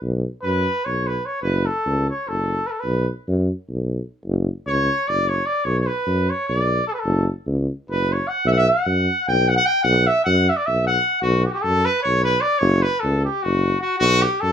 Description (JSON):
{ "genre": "balkan folk", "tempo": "301 BPM (eighths)", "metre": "7/8", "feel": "straight", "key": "B minor", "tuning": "A4 = 440 Hz", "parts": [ { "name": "mellow tuba", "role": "bass", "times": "0.0-14.5 s", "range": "F#1 to F#2", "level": "-21 LUFS", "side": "equal", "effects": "none" }, { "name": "warm trumpet", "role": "melody", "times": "0.4-14.5 s", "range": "F#4 to G5", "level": "-20 LUFS", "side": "equal", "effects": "none" } ], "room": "light reverb", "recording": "none", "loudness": "-18 LUFS", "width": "side -8 dB against mid", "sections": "0.0-11.2 A section; 11.2-14.5 B section", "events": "trumpet solo 0.0-11.2", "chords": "0.0 B5; 1.4 F#m; 2.8 B5; 4.2 F#5; 5.6 Bm; 7.0 F#5; 8.4 B5; 12.6 F#5; 14.0 B5" }